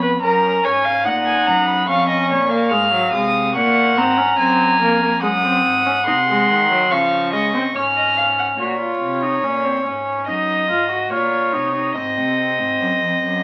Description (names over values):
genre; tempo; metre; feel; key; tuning
classical, baroque-style fugue for string quartet; 72 BPM; 4/4; straight; F# major; A4 = 439 Hz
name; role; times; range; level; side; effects
rich violin; melody; 0.0-8.6 s; F#5 to E#6; -21 LUFS; equal; none
rich violin; second line; 0.0-13.4 s; A#4 to G#5; -22 LUFS; equal; none
rich viola; accompaniment; 0.0-13.4 s; E#3 to F#4; -24 LUFS; equal; none
rich cello; bass; 0.0-13.4 s; E#2 to D#3; -28 LUFS; equal; none
room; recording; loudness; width
moderate large studio reverb, RT60 0.9 s; very old 78 rpm record, vinyl crackle; -18 LUFS; mono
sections
0.0-8.6 A section; 8.6-13.4 B section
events
none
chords
0.2 F#; 1.9 C#/E#; 5.2 G#7/F#; 6.9 C#; 8.6 F#/A# (rootless); 10.3 D#m/F#; 12.0 G#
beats
0.22 1.05 | 1.89 2.73 3.56 4.39 | 5.23 6.07 6.91 7.75 | 8.59 9.44 10.28 11.12 | 11.95 12.79